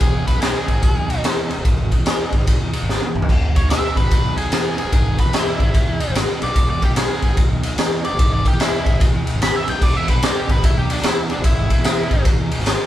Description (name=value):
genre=blues rock power trio and southern rock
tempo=147 BPM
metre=4/4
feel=swing 64% on 8ths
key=E mixolydian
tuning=A4 = 440 Hz
part: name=octave-fuzz lead guitar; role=melody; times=0.0-12.2 s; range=D4 to B5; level=-24 LUFS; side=equal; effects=distortion
part: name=fuzz fingered electric bass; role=bass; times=0.0-12.7 s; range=E1 to E2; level=-24 LUFS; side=equal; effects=overdrive
part: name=raw garage drum kit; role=drums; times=0.0-12.8 s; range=crash cymbal, kick drum, ride cymbal, snare drum, toms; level=-16 LUFS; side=equal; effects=none
room=light reverb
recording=band playing live in one room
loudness=-15 LUFS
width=side -13 dB against mid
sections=0.0-12.9 A section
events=lead electric guitar solo 0.0-12.9; drum fill 2.9-3.3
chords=0.0 E